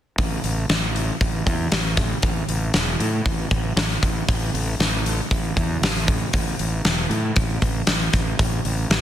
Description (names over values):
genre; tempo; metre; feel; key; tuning
hard rock; 117 BPM; 4/4; straight; unclear; A4 = 440 Hz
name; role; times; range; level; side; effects
fuzz fingered electric bass; bass; 0.2-9.0 s; E1 to A2; -24 LUFS; equal; overdrive
big rock drum kit; drums; 0.2-9.0 s; hi-hat, kick drum, snare drum; -21 LUFS; equal; none
room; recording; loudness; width
little or no reverb; dense, heavily limited modern master; -19 LUFS; side -11 dB against mid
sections
0.2-9.0 A section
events
none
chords
none